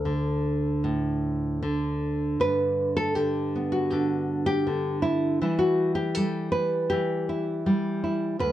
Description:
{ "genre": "folk, solo fingerstyle acoustic guitar", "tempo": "79 BPM", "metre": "4/4", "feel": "rubato", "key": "G major", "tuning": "A4 = 440 Hz", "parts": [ { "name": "nylon-string guitar", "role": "solo", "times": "0.0-8.5 s", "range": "D2 to B4", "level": "-24 LUFS", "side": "equal", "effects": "none" } ], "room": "light reverb", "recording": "dark, warm production", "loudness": "-24 LUFS", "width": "side -13 dB against mid", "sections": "0.0-2.4 A section; 2.4-8.5 B section", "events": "none", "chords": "0.0 D5; 2.4 G; 5.4 Em", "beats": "0.05 0.83 1.61 | 2.40 3.16 3.92 4.68 | 5.43 6.17 6.91 7.66 | 8.39" }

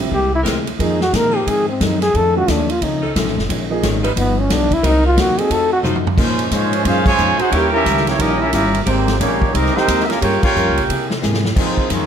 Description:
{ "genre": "jazz, big band swing", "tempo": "178 BPM", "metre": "4/4", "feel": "swing 63% on 8ths", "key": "Bb minor", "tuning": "A4 = 440 Hz", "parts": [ { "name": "warm concert grand piano", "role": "accompaniment", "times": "0.0-5.8 s", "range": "Eb3 to A4", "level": "-24 LUFS", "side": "right 5 dB", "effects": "none" }, { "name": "upright bass", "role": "bass", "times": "0.0-12.1 s", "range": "F1 to C3", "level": "-21 LUFS", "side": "equal", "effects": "none" }, { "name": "mellow trombone", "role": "melody", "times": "0.1-5.8 s", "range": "B3 to Bb4", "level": "-18 LUFS", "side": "left 1 dB", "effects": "none" }, { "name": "hollow-body jazz guitar", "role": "accompaniment", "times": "0.1-12.1 s", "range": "F2 to Bb4", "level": "-24 LUFS", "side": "left 5 dB", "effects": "none" }, { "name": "swinging big-band drum kit", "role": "drums", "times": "0.1-12.0 s", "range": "crash cymbal, hi-hat, kick drum, ride cymbal, snare drum, toms", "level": "-21 LUFS", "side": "equal", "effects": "none" }, { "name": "warm saxophone section", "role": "sustained chords", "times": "0.4-10.9 s", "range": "C3 to C5", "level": "-26 LUFS", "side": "equal", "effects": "none" }, { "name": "mellow trumpet section", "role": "melody", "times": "6.2-12.1 s", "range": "Ab3 to Ab5", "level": "-18 LUFS", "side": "right 2 dB", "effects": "none" }, { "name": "warm trombone section", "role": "second line", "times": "6.2-12.1 s", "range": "Db3 to G4", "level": "-22 LUFS", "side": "right 3 dB", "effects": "none" } ], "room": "light reverb", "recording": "none", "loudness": "-14 LUFS", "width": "side -8 dB against mid", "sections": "0.0-6.2 A section; 6.2-12.1 B section", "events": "trombone solo 0.0-6.2; drum fill 5.8-6.2, 11.2-11.6; band accent 7.0, 10.4", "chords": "0.1 C7b13; 0.8 Fm7; 2.1 F7b13; 3.5 Bbm7; 4.2 G7b13; 4.8 Cm7b5; 5.5 F7b9; 6.2 Bbm11; 7.5 Eb7b9; 8.9 Abmaj9; 10.2 Gm7b5; 10.9 C7b13", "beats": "0.11 0.45 | 0.79 1.13 1.46 1.80 | 2.14 2.48 2.81 3.15 | 3.49 3.82 4.16 4.50 | 4.83 5.17 5.50 5.84 | 6.18 6.51 6.85 7.18 | 7.52 7.86 8.19 8.53 | 8.87 9.20 9.54 9.88 | 10.21 10.55 10.89 11.23 | 11.56 11.90" }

